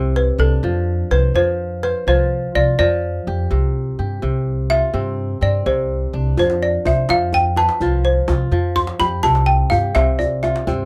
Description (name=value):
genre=west african traditional, West African string and xylophone music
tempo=84 BPM (dotted quarters)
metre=12/8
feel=straight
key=unclear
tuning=A4 = 441 Hz
part: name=kora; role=arpeggios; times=0.0-10.9 s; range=C3 to C5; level=-26 LUFS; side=equal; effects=none
part: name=upright bass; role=bass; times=0.0-10.9 s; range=C2 to G2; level=-22 LUFS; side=equal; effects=none
part: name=balafon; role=melody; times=0.2-10.7 s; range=A4 to C6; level=-21 LUFS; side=equal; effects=none
part: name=djembe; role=percussion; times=6.4-10.8 s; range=none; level=-28 LUFS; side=equal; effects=none
room=moderate small room ambience, RT60 0.5 s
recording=rough home demo mix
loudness=-18 LUFS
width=mono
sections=0.0-10.9 A section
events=balafon solo 0.0-10.9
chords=0.0 C5; 6.4 F5; 9.2 C5